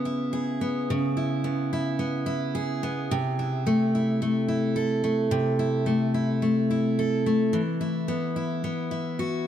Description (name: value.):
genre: pop.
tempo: 108 BPM.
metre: 4/4.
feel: swing 60% on 16ths.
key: unclear.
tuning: A4 = 441 Hz.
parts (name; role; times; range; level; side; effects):
picked steel-string acoustic guitar; solo; 0.0-9.5 s; C3 to A4; -24 LUFS; equal; analog delay.
room: moderate plate reverb, RT60 2.4 s.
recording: echo-heavy mix.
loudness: -23 LUFS.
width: side -10 dB against mid.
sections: 0.0-9.5 A section.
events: none.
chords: 0.0 C#m7; 3.1 Am/C; 7.5 Esus2.